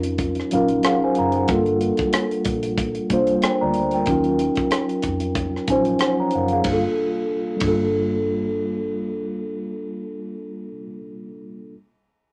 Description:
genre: R&B, neo-soul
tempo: 93 BPM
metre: 4/4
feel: swing 55% on 16ths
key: unclear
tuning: A4 = 440 Hz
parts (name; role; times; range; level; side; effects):
- mellow tine electric piano; accompaniment; 0.0-11.7 s; F3 to Bb5; -23 LUFS; equal; none
- vintage muted fingered electric bass; bass; 0.0-10.7 s; Gb1 to F2; -33 LUFS; equal; none
- tight funk drum kit; drums; 0.0-7.8 s; hi-hat, kick drum, ride cymbal, rim click; -29 LUFS; equal; none
room: moderate small room reverb, RT60 0.6 s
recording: none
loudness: -22 LUFS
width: mono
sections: 0.0-6.6 A section; 6.6-9.2 B section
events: tine electric piano fill 0.2-1.5, 5.4-6.6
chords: 0.0 Ebm9; 1.5 Gm9; 4.1 Ebm9; 6.6 Gm9

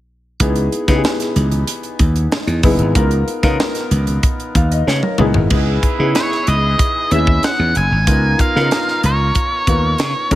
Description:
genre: polished 1980s jazz-funk pop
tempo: 94 BPM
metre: 4/4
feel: straight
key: C# minor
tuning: A4 = 439 Hz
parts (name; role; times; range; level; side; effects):
- warm grand piano; accompaniment; 0.4-10.4 s; B3 to E#5; -20 LUFS; left 2 dB; lush chorus
- slap bass; bass; 0.4-10.4 s; F#1 to C#3; -16 LUFS; equal; none
- tight funk drum kit; drums; 0.4-10.4 s; crash cymbal, hi-hat, kick drum, snare drum, toms; -18 LUFS; equal; none
- congas; percussion; 0.7-5.3 s; none; -29 LUFS; right 2 dB; none
- mellow horn section; second line; 5.5-10.4 s; D#4 to B4; -26 LUFS; right 3 dB; none
- octave-fuzz lead guitar; melody; 6.2-10.3 s; C#5 to G#5; -18 LUFS; equal; distortion
room: small room ambience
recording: faint mains hum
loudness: -13 LUFS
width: side -15 dB against mid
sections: 0.4-5.5 A section; 5.5-10.4 B section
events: drum fill 4.9-5.5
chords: 0.4 C#m9; 3.0 C#13; 5.2 C#m9; 8.1 C#13

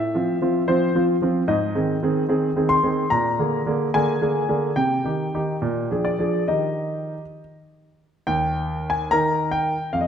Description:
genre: classical-period piano sonatina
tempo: 67-75 BPM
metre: 2/4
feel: rubato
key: Eb major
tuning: A4 = 440 Hz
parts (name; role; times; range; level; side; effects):
- clear concert grand piano; solo; 0.0-10.1 s; Eb2 to C6; -20 LUFS; equal; none
room: wet recital hall reverb, RT60 1.7 s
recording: none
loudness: -20 LUFS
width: side -8 dB against mid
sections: 0.0-8.3 A section; 8.3-10.1 B section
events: none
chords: 0.0 F5; 1.5 Ab; 3.1 Bb7; 4.8 Cm; 5.6 Bb7; 6.5 Eb; 8.3 Eb5

